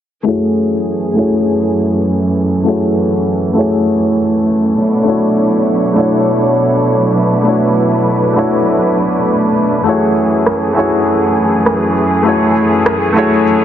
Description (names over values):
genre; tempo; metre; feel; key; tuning
sunset chillout; 100 BPM; 4/4; swing 56% on 16ths; unclear; A4 = 439 Hz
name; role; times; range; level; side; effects
clear concert grand piano; accompaniment; 0.2-13.6 s; A3 to C#5; -14 LUFS; left 2 dB; auto-pan, low-pass filter, tape echo
clear studio string section; sustained chords; 0.3-13.6 s; F#2 to C#5; -13 LUFS; right 1 dB; low-pass filter
electronic cabasa and rim click; drums; 9.9-13.6 s; none; -16 LUFS; right 1 dB; overdrive
room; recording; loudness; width
moderate lush hall reverb, RT60 2.0 s, small room ambience; heavily compressed radio sound, low-pass filter; -11 LUFS; side -10 dB against mid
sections
0.3-13.6 A section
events
filter sweep on grand piano 0.3-13.6; filter sweep on string section 0.3-13.6; filter sweep 0.3-13.6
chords
0.3 F#m9; 4.8 Bm11; 9.9 F#m9